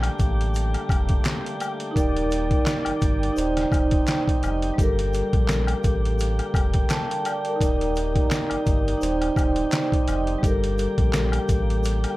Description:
hip hop, boom-bap hip-hop; 85 BPM; 4/4; swing 55% on 16ths; G minor; A4 = 439 Hz
tonewheel organ; sustained chords; 0.0-12.2 s; D3 to D5; -32 LUFS; left 1 dB; overdrive, lush chorus, high-pass filter, low-pass filter, plate reverb
sub bass with octave; bass; 0.0-12.1 s; Eb1 to Bb1; -26 LUFS; equal
trip hop sampler-style drum kit; drums; 0.0-12.2 s; handclaps, hi-hat, kick drum, snare drum; -24 LUFS; equal
woodblock and egg shaker; percussion; 0.0-12.2 s; -34 LUFS; left 4 dB
vibraphone with soft mallets; accompaniment; 1.9-12.2 s; G3 to A5; -25 LUFS; right 1 dB; cassette tape, high-pass filter, low-pass filter, plate reverb
light reverb; -20 LUFS; side -18 dB against mid
0.0-12.2 A section
break 0.0-2.0
0.0 Gmadd9; 2.0 Ebmaj7; 3.4 Cmadd9/Eb; 4.8 Gmadd9; 7.6 Ebmaj7; 9.0 Cmadd9/Eb; 10.4 Gmadd9

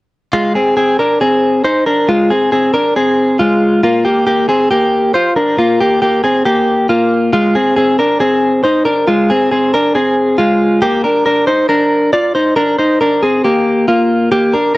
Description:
indie pop; 137 BPM; 4/4; straight; F dorian; A4 = 440 Hz
direct-recorded clean electric guitar; solo; 0.3-14.8 s; Ab3 to D5; -10 LUFS; equal; cassette tape
light reverb; home recording on cassette; -10 LUFS; side -19 dB against mid
0.3-7.3 A section; 7.3-14.8 B section
0.3 Fm; 3.8 Gm7; 7.3 Fm; 10.8 Gm7

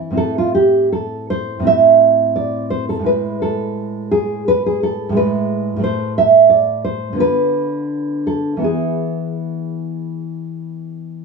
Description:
romantic piece for solo classical guitar; 85 BPM; 4/4; uneven beats, rubato; A minor; A4 = 439 Hz
nylon-string guitar; solo; 0.0-11.2 s; A2 to E5; -15 LUFS; right 2 dB
light reverb; small room ambience; -14 LUFS; side -4 dB against mid
0.2-11.2 A section
0.2 Am; 3.1 E/A; 5.8 A5; 7.2 Bdim/D; 8.6 E

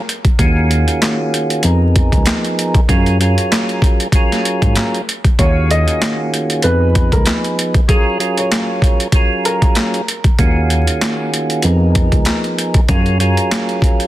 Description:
hip hop, boom-bap hip-hop; 96 BPM; 4/4; swing 56% on 16ths; F# major; A4 = 440 Hz
percussive tonewheel organ; accompaniment; 0.0-14.1 s; D#3 to B4; -18 LUFS; right 1 dB; slow rotary speaker
boom bap sampler-style drum kit; drums; 0.1-14.1 s; handclaps, hi-hat, kick drum, snare drum; -14 LUFS; equal; overdrive
tine electric piano; bass; 0.4-13.3 s; C#2 to G#2; -14 LUFS; equal; medium stereo tremolo
dark upright piano; melody; 5.4-9.7 s; G#4 to D#5; -22 LUFS; equal; tape echo
light reverb; dense, heavily limited modern master, vinyl crackle; -12 LUFS; side -15 dB against mid
0.0-14.1 A section
0.4 D#m11; 1.6 C#13 (rootless); 2.9 F#maj9; 5.4 D#m11; 6.6 C#9 (rootless); 7.9 F#maj9; 10.4 D#m11; 11.6 C#13 (rootless); 12.9 F#maj9

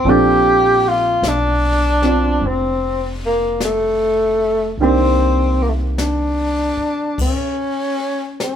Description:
jazz ballad; 50 BPM; 4/4; swing 66% on 8ths; Bb major; A4 = 440 Hz
breathy tenor saxophone; melody; 0.0-8.6 s; A3 to G4; -17 LUFS; left 1 dB
clear grand piano; accompaniment; 0.0-7.2 s; Bb2 to D5; -19 LUFS; right 2 dB
upright bass; bass; 0.0-6.8 s; F1 to C2; -21 LUFS; equal
jazz brush drum kit; drums; 0.1-8.6 s; brushed snare drum, crash cymbal, hi-hat, kick drum, snare drum; -28 LUFS; left 1 dB
moderate stone room reverb, RT60 1.1 s; band playing live in one room; -15 LUFS; side -9 dB against mid
0.0-8.6 A section
0.1 Bbmaj7; 4.8 Cm7; 7.2 N.C.

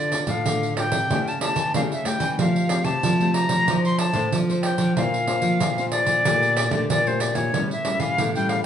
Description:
samba and choro; 93 BPM; 4/4; straight; D minor; A4 = 441 Hz
silver concert flute; melody; 0.0-8.7 s; C5 to C6; -23 LUFS; left 1 dB
nylon-string guitar; accompaniment; 0.0-8.7 s; A2 to C5; -28 LUFS; left 4 dB
nylon-string guitar; bass; 0.0-8.6 s; A2 to F3; -25 LUFS; right 1 dB
pandeiro; percussion; 0.1-8.7 s; -26 LUFS; right 3 dB
wet large studio reverb, RT60 1.1 s; band playing live in one room, nothing above 11.0 kHz; -19 LUFS; side -9 dB against mid
0.0-8.7 A section
0.0 Dm; 1.1 A7/C#; 2.4 Fadd9; 3.7 Dm7; 5.0 Bbadd9; 6.3 Gmadd9/Bb; 7.5 A7

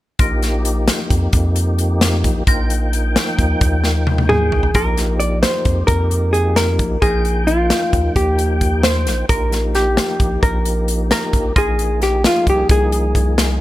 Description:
progressive instrumental, band music in an uneven meter; 264 BPM (eighths); 5/8; straight; A4 = 438 Hz
percussive tonewheel organ; accompaniment; 0.2-13.6 s; F3 to G5; -23 LUFS; left 1 dB; chorus vibrato, slow rotary speaker
round analog bass; bass; 0.2-13.6 s; Bb1 to F2; -18 LUFS; equal
natural country drum kit; drums; 0.2-13.5 s; hi-hat, kick drum, snare drum, toms; -18 LUFS; equal
hollow-body jazz guitar; melody; 4.3-13.6 s; F4 to D5; -18 LUFS; equal
small room ambience; -14 LUFS; side -15 dB against mid
0.2-4.7 A section; 4.7-13.6 B section
drum fill 3.8-4.7
0.2 Bbsus4; 11.6 Fm7/Bb

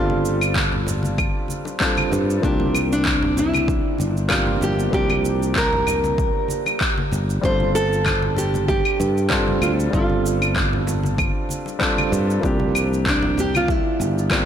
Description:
sunset chillout; 96 BPM; 4/4; swing 55% on 16ths; G minor; A4 = 440 Hz
nylon-string guitar; melody; 0.0-14.3 s; D4 to C5; -24 LUFS; right 1 dB; tape echo, shimmer reverb
dark grand piano; accompaniment; 0.0-14.5 s; F3 to A4; -25 LUFS; right 1 dB; auto-pan, tape echo, shimmer reverb
sustaining fretless electric bass; bass; 0.0-14.5 s; G1 to G2; -23 LUFS; equal
congas and bongos; percussion; 0.1-14.1 s; -31 LUFS; left 2 dB
electronic cabasa, claves and handclaps; drums; 0.3-14.5 s; -25 LUFS; equal
electronic kick drum; drums; 0.6-14.4 s; -25 LUFS; equal; overdrive
light reverb, studio ambience; blown-out, overdriven recording, overdrive; -18 LUFS; side -9 dB against mid
0.0-14.5 A section
0.0 G9sus4; 2.4 C9sus4; 7.4 G9sus4; 12.4 C9sus4

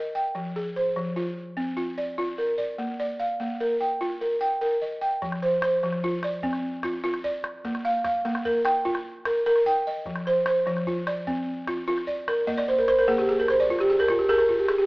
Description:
west african traditional, West African string and xylophone music; 99 BPM (dotted quarters); 12/8; straight; F dorian; A4 = 440 Hz
balafon; arpeggios; 0.0-14.9 s; F3 to G5; -23 LUFS; equal
calabash; percussion; 5.2-14.8 s; -35 LUFS; equal
wet large studio reverb, RT60 1.4 s; band playing live in one room, AM radio sound; -23 LUFS; side -24 dB against mid
0.0-5.2 A section; 5.2-14.9 B section
balafon fill 12.5-14.9
0.3 Fm; 2.8 Bb; 5.2 F5; 7.6 Bb5; 10.1 F5; 12.5 Bb

